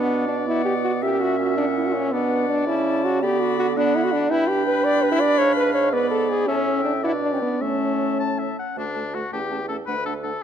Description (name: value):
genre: quick classical-period movement for wind quintet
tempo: 109 BPM (dotted quarters)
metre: 6/8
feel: rubato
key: B minor, D major from 4.3 s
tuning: A4 = 438 Hz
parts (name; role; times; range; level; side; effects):
- silver concert flute; melody; 0.0-10.3 s; E5 to B5; -32 LUFS; left 11 dB; none
- clear oboe; second line; 0.0-10.4 s; D4 to A5; -28 LUFS; left 4 dB; none
- clear French horn; accompaniment; 0.0-10.3 s; A3 to D5; -22 LUFS; left 1 dB; none
- mellow clarinet; accompaniment; 0.0-10.3 s; A3 to F#4; -27 LUFS; right 9 dB; none
- warm bassoon; bass; 0.0-10.4 s; D2 to D3; -28 LUFS; right 3 dB; none
room: moderate concert hall reverb, RT60 2.0 s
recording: close, detailed microphones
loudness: -19 LUFS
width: side -8 dB against mid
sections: 0.0-8.8 A section; 8.8-10.4 B section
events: none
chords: 0.0 Bm; 1.0 F#7/A#; 2.1 Bm; 3.2 Bm/D; 4.3 G6; 5.4 G#dim7; 6.5 A; 7.0 Bm; 7.6 A; 8.8 D; 9.3 A7/E; 9.9 D